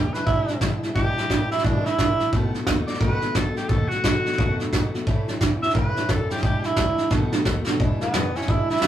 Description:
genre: rockabilly.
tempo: 176 BPM.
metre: 4/4.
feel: swing 62% on 8ths.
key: E mixolydian.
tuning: A4 = 439 Hz.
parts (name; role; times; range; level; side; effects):
breathy tenor saxophone; melody; 0.0-8.9 s; B3 to E5; -25 LUFS; right 1 dB; none.
picked steel-string acoustic guitar; accompaniment; 0.0-8.9 s; E2 to F#4; -29 LUFS; left 2 dB; none.
upright bass; bass; 0.0-8.9 s; G#1 to A2; -31 LUFS; equal; none.
soft brush drum kit; drums; 0.1-8.9 s; hi-hat, kick drum, snare drum; -22 LUFS; right 1 dB; none.
room: moderate booth ambience, RT60 0.3 s.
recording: rough rehearsal-room recording, tube saturation, small room ambience.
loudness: -20 LUFS.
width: side -11 dB against mid.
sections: 0.0-7.8 A section; 7.8-8.9 B section.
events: tenor saxophone solo 0.0-7.8; drum fill 7.1-7.8.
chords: 0.0 E7; 2.3 B7; 5.1 A7; 6.4 E7; 7.1 B7; 7.8 E7.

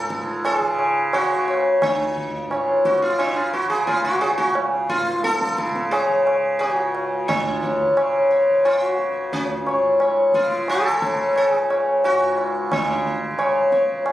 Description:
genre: indian classical, Hindustani.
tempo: 88 BPM.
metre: 4/4.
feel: straight.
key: unclear.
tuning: A4 = 440 Hz.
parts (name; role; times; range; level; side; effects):
sitar; melody; 0.0-14.0 s; C#4 to C#5; -19 LUFS; left 1 dB; none.
tanpura; drone; 0.0-14.1 s; C#2 to C#3; -27 LUFS; right 1 dB; none.
tabla; percussion; 0.1-14.1 s; none; -24 LUFS; right 2 dB; none.
room: moderate recital hall reverb, RT60 1.4 s.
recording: recorded on a phone in the room, club reverb, compression.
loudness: -18 LUFS.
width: side -14 dB against mid.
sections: 0.0-7.3 A section; 7.3-14.1 B section.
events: none.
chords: none.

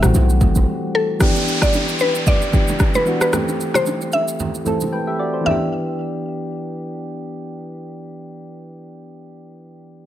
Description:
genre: afrobeats.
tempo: 113 BPM.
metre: 4/4.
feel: swing 55% on 16ths.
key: E minor.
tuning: A4 = 440 Hz.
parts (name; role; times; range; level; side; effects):
soft electric-piano-like synth keys; accompaniment; 0.0-10.1 s; E3 to G5; -23 LUFS; equal; chorus.
warm 808-style bass; bass; 0.0-0.7 s; A1 to B1; -15 LUFS; equal; none.
afro-pop drum kit; drums; 0.0-4.9 s; kick drum, rim click, shaker, toms; -19 LUFS; equal; none.
congas and bongos; percussion; 0.2-5.7 s; none; -27 LUFS; right 4 dB; none.
mallet-like synth pluck; melody; 0.9-7.0 s; A4 to E5; -21 LUFS; left 1 dB; chorus, tape echo.
downlifter; sound effects; 1.2-5.5 s; none; -26 LUFS; equal; none.
room: light reverb, digital ambience.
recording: none.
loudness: -16 LUFS.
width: side -12 dB against mid.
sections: 0.0-1.2 A section; 1.2-5.5 B section; 5.5-9.7 C section.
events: break 0.7-1.2; silent gap 4.9-5.5.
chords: 0.0 Am7; 1.2 Em7; 3.3 Am7; 5.5 Em7.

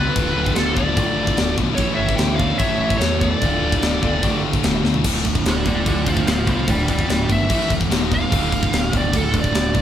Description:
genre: heavy metal.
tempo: 147 BPM.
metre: 4/4.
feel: straight.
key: D dorian, D minor from 5.0 s.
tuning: A4 = 440 Hz.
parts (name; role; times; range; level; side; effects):
high-gain lead guitar; melody; 0.0-9.8 s; A4 to G5; -23 LUFS; equal; distortion.
high-gain lead guitar; second line; 0.0-4.4 s; F4 to E5; -31 LUFS; right 3 dB; distortion.
muted studio string section; sustained chords; 0.0-9.8 s; D3 to Eb5; -34 LUFS; left 1 dB; none.
heavy high-gain guitar; riff; 0.0-9.8 s; D2 to A3; -27 LUFS; left 8 dB; distortion.
overdriven electric guitar; riff; 0.0-9.8 s; D2 to A4; -27 LUFS; equal; none.
sludgy distorted guitar; riff; 0.0-9.8 s; D2 to A3; -27 LUFS; right 7 dB; overdrive.
growling picked electric bass; bass; 0.0-9.8 s; D1 to E2; -24 LUFS; equal; overdrive.
tight metal drum kit; drums; 0.2-9.8 s; crash cymbal, kick drum, snare drum, toms; -21 LUFS; left 1 dB; none.
room: light reverb.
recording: band playing live in one room.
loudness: -16 LUFS.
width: side -10 dB against mid.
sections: 0.0-5.0 A section; 5.0-9.8 B section.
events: drum fill 4.8; lead electric guitar solo 5.0-9.8.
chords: 0.2 Dm; 1.8 A; 3.4 Dm; 7.5 A5; 7.9 Eb5; 8.3 Dm.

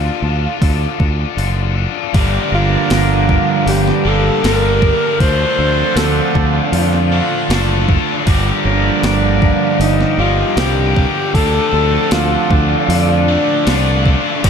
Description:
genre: rock, shoegaze and dream pop.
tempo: 78 BPM.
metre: 4/4.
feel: straight.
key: G minor.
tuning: A4 = 441 Hz.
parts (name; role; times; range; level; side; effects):
clear alto saxophone; melody; 0.0-14.0 s; D4 to C5; -19 LUFS; left 1 dB; ping-pong delay.
biting overdriven guitar; riff; 0.0-14.5 s; G2 to Bb4; -21 LUFS; left 11 dB; lush chorus.
twangy electric guitar; riff; 0.0-14.5 s; G2 to Bb4; -21 LUFS; right 11 dB; reverse reverb.
growling fingered electric bass; bass; 0.0-14.5 s; F#1 to F2; -16 LUFS; equal; overdrive.
crisp 8-bit digital drum machine; drums; 0.6-14.5 s; crash cymbal, hi-hat, kick drum, snare drum; -18 LUFS; equal; overdrive.
distorted electric guitar; riff; 2.1-14.5 s; G2 to D4; -20 LUFS; equal; distortion.
room: moderate huge ambient reverb, RT60 4.9 s.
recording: dreamy mix soaked in reverb.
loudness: -12 LUFS.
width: side -7 dB against mid.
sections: 0.0-2.1 A section; 2.1-14.5 B section.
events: break 1.4-2.1.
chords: 0.0 Dm7; 2.1 Gm7; 5.2 Dm7; 8.3 Gm7; 11.3 Dm7.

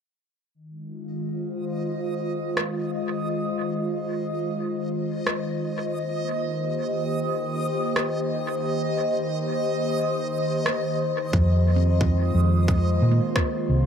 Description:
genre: ambient dub.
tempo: 89 BPM.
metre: 4/4.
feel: swing 56% on 16ths.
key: F minor.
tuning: A4 = 442 Hz.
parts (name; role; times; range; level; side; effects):
airy breathy pad; sustained chords; 0.5-13.9 s; Eb3 to C5; -26 LUFS; left 1 dB; chorus.
backwards swelling texture; texture; 1.7-13.9 s; Eb5; -31 LUFS; equal; built-in reverb.
electronic rim click; drums; 2.6-13.5 s; none; -29 LUFS; equal; dub echo.
hollow-body short-scale fingered electric bass; bass; 11.3-13.9 s; C2 to Bb2; -19 LUFS; equal; tube saturation.
electronic kick drum; drums; 11.3-13.5 s; none; -24 LUFS; equal; none.
handpan; arpeggios; 11.8-13.9 s; Bb3 to C4; -32 LUFS; right 10 dB; tape echo.
room: moderate spring reverb, RT60 2.0 s, digital ambience.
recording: echo-heavy mix.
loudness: -22 LUFS.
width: side -8 dB against mid.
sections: 0.5-13.9 A section.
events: filter sweep on analog synth pad 0.5-13.9.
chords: 0.5 Fm7; 5.9 Eb6; 11.3 Fm7.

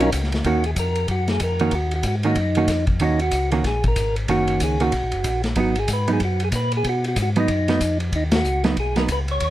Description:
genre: soul jazz organ trio.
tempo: 187 BPM.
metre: 4/4.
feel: swing 62% on 8ths.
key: Eb minor.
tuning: A4 = 440 Hz.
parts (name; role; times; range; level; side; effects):
percussive tonewheel organ; melody; 0.0-9.5 s; Gb3 to Db5; -24 LUFS; equal; slow rotary speaker, plate reverb.
hollow-body jazz guitar; accompaniment; 0.0-9.1 s; Eb3 to Gb4; -21 LUFS; right 4 dB; none.
mellow tonewheel organ; bass; 0.0-9.5 s; Gb1 to Cb3; -23 LUFS; left 1 dB; slow rotary speaker.
vintage drum kit; drums; 0.0-9.5 s; hi-hat, kick drum, ride cymbal, snare drum; -26 LUFS; left 1 dB; none.
room: light reverb.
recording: none.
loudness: -18 LUFS.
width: side -14 dB against mid.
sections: 0.4-9.5 A section.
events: band accent 8.3.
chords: 0.4 Ebm7; 5.6 Abm7.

